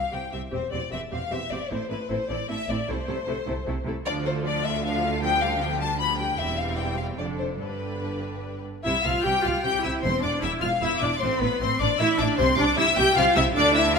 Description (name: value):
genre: quick classical-period movement for string orchestra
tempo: 153 BPM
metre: 3/4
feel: rubato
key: C major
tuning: A4 = 439 Hz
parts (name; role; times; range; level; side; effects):
- rich symphonic violin section; second line; 0.0-14.0 s; B4 to B5; -26 LUFS; left 4 dB; none
- clear symphonic violin section; melody; 0.1-14.0 s; E4 to G6; -29 LUFS; left 5 dB; none
- clear symphonic viola section; accompaniment; 0.1-14.0 s; D3 to G4; -29 LUFS; right 2 dB; none
- rich symphonic cello section; bass; 0.1-14.0 s; C2 to D3; -32 LUFS; right 3 dB; none
- rich symphonic double bass section; bass; 0.1-14.0 s; E1 to D2; -31 LUFS; right 3 dB; none
room: moderate scoring stage reverb, RT60 1.6 s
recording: none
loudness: -22 LUFS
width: side -5 dB against mid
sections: 0.0-8.8 A section; 8.8-14.0 A section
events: none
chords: 0.0 C5; 0.5 C/E; 1.7 Am; 2.9 Am/C; 4.1 Dm; 5.2 G7/D; 6.4 C/E; 7.2 Dm/F; 7.6 G; 8.8 Cadd11; 10.0 Dm9/E; 11.2 Amadd11; 12.4 Cadd9